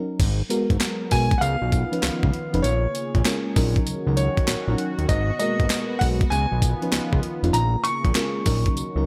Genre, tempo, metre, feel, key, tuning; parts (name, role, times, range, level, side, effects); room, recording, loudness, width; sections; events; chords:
R&B, new jack swing; 98 BPM; 4/4; swing 66% on 16ths; G# dorian; A4 = 437 Hz
FM electric piano with tremolo; accompaniment; 0.0-9.1 s; E#3 to B4; -30 LUFS; equal
sweeping resonant pad; sustained chords; 0.2-9.1 s; B2 to A#4; -34 LUFS; equal; chorus
fat analog bass; bass; 0.2-9.1 s; E#1 to D#2; -25 LUFS; equal
breakbeat sampler-style drum kit; drums; 0.2-9.0 s; crash cymbal, handclaps, hi-hat, kick drum, snare drum, tambourine; -26 LUFS; equal; gated reverb
group handclap; percussion; 0.8-8.3 s; barely audible
clear concert grand piano; melody; 1.1-9.1 s; C#5 to C#6; -30 LUFS; equal; delay
digital ambience; -22 LUFS; mono
0.2-9.1 A section
break 0.0
0.2 G#m9; 1.4 C#9; 2.6 A#m7; 3.6 D#m7/A#; 5.1 G#m9; 6.3 C#9; 7.5 A#m7; 8.5 D#m7/A#